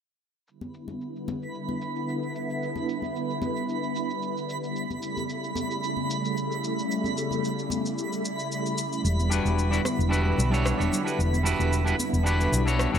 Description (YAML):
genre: sunset chillout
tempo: 112 BPM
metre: 4/4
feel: swing 54% on 16ths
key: E dorian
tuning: A4 = 440 Hz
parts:
  - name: soft string machine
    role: sustained chords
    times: 0.5-13.0 s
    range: C#3 to E4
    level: -30 LUFS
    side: equal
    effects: phaser, ensemble chorus
  - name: electronic cabasa and rim click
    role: drums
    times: 0.5-13.0 s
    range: none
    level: -34 LUFS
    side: left 1 dB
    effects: low-pass filter on perc, low-pass filter on snare
  - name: twinkling granular texture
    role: texture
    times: 1.5-13.0 s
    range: B5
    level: -35 LUFS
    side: right 4 dB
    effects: built-in reverb
  - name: congas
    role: percussion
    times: 0.6-12.6 s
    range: none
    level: -36 LUFS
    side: left 2 dB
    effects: none
  - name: hollow-body short-scale fingered electric bass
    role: bass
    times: 9.0-13.0 s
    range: E1 to B1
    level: -24 LUFS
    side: equal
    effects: none
  - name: clean electric guitar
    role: accompaniment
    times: 9.3-13.0 s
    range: G3 to C#5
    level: -27 LUFS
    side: moving between left 6 dB and right 5 dB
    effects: auto-pan, tape echo
room: light reverb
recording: none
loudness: -25 LUFS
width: side -8 dB against mid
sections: 0.5-13.0 A section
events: filter sweep on string machine 0.5-13.0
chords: 0.5 Em7; 4.8 A7; 9.0 Em7